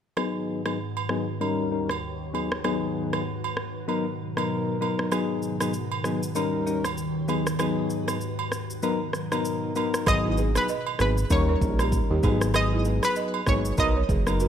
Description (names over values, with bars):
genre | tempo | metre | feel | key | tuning
afrobeats | 97 BPM | 4/4 | swing 58% on 16ths | G# minor | A4 = 440 Hz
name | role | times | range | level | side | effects
soft electric-piano-like synth keys | accompaniment | 0.2-14.5 s | F#3 to A#4 | -28 LUFS | left 4 dB | chorus, tremolo, low-pass filter
glassy FM pad | sustained chords | 0.4-10.1 s | G#2 to B4 | -32 LUFS | equal | ensemble chorus, built-in reverb, low-pass filter
afro-pop drum kit | drums | 0.2-14.5 s | kick drum, rim click, shaker | -29 LUFS | right 1 dB | none
agogo bells | percussion | 0.2-14.4 s | none | -35 LUFS | right 9 dB | none
analog pluck | melody | 10.1-14.5 s | B4 to D#5 | -27 LUFS | right 1 dB | chorus, digital delay
fat analog bass | bass | 10.1-14.5 s | F#1 to D#2 | -25 LUFS | right 1 dB | none
balafon | riff | 10.3-14.5 s | D#4 to D#5 | -32 LUFS | right 6 dB | digital delay
room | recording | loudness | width
light reverb | none | -23 LUFS | side -9 dB against mid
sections
0.2-10.1 A section; 10.1-14.5 B section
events
filter sweep 0.2-10.1; kick muted 8.8-10.1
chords
0.2 G#m7; 1.4 D#7; 2.3 G#m7; 3.9 Bmaj7; 5.1 G#m7; 6.4 D#7; 7.3 G#m7; 8.8 Bmaj7; 10.1 G#m7; 11.3 D#7; 12.2 G#m7; 13.8 Bmaj7